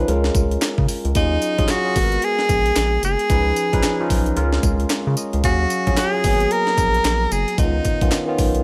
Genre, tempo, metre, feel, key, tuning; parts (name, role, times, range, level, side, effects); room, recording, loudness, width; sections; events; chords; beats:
R&B, new jack swing; 112 BPM; 4/4; swing 61% on 16ths; A4 = 438 Hz
tine electric piano; accompaniment; 0.0-8.6 s; Eb3 to F5; -26 LUFS; equal; phaser
round analog bass; bass; 0.0-8.6 s; Gb1 to Db3; -24 LUFS; equal
breakbeat sampler-style drum kit; drums; 0.1-8.6 s; handclaps, hi-hat, kick drum, snare drum, tambourine; -24 LUFS; equal
clear tenor saxophone; melody; 1.2-8.4 s; Eb4 to Bb4; -23 LUFS; equal
light reverb; -19 LUFS; mono
0.0-8.6 A section
0.1 Bbm7/Db; 1.2 Ebm11; 2.0 Abm9; 3.3 Db9; 4.4 Bbm7/Db; 5.4 Ebm11; 6.2 Abm9; 7.6 Db9
0.08 0.62 | 1.15 1.69 2.22 2.76 | 3.30 3.83 4.37 4.90 | 5.44 5.97 6.51 7.05 | 7.58 8.12